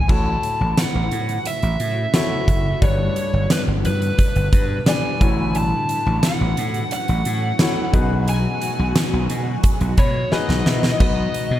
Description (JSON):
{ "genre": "1980s-style pop", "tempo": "88 BPM", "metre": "4/4", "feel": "straight", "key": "unclear", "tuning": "A4 = 440 Hz", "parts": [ { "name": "lead guitar through a small cranked amp", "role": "melody", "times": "0.0-11.6 s", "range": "B4 to A5", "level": "-25 LUFS", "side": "equal", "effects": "overdrive" }, { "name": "clear grand piano", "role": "accompaniment", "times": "0.0-11.6 s", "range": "G2 to B5", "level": "-27 LUFS", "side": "left 5 dB", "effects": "none" }, { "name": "shimmering ambient pad", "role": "sustained chords", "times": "1.2-11.6 s", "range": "B2 to B4", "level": "-30 LUFS", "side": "equal", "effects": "chorus, built-in reverb, phaser" }, { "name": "gritty slap bass", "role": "bass", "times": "0.1-11.6 s", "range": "F#1 to B2", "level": "-21 LUFS", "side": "equal", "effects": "overdrive" }, { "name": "huge arena drum kit", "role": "drums", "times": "0.1-11.5 s", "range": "crash cymbal, hi-hat, kick drum, snare drum", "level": "-20 LUFS", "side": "equal", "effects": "gated reverb" } ], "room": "light reverb, studio ambience", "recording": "none", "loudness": "-17 LUFS", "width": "side -13 dB against mid", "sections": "0.1-11.0 A section", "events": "grand piano fill 9.6-11.0; drum fill 10.3-11.0", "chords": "0.1 A6; 2.8 G; 5.2 A6; 7.9 B6; 11.0 B" }